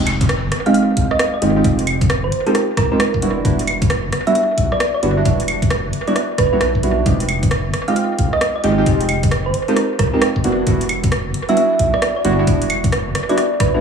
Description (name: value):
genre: UK garage, two-step garage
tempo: 133 BPM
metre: 4/4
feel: swing 64% on 16ths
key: unclear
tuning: A4 = 441 Hz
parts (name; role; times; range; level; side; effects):
- saturated sub bass; bass; 0.0-13.8 s; E1 to C2; -21 LUFS; equal; none
- sub drop; sound effects; 0.0-1.6 s; none; -30 LUFS; left 1 dB; none
- garage drum kit; drums; 0.1-13.7 s; claves, hi-hat, rim click; -22 LUFS; right 1 dB; small room ambience, dub echo
- electronic kick drum; drums; 0.2-13.7 s; none; -18 LUFS; equal; small room ambience
- thumb-piano-like synth pluck; melody; 0.7-13.8 s; Bb4 to F5; -21 LUFS; right 1 dB; chorus, dub echo
- deep mellow chord stab; stabs; 0.7-13.8 s; G3 to G4; -19 LUFS; right 2 dB; lush chorus, dub echo
room: moderate plate reverb, RT60 1.8 s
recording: echo-heavy mix, small room reverb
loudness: -14 LUFS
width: side -6 dB against mid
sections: 0.0-13.8 A section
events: impact 0.0-1.6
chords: 0.0 Fm9; 3.2 Em9; 7.1 Fm9; 10.4 Em9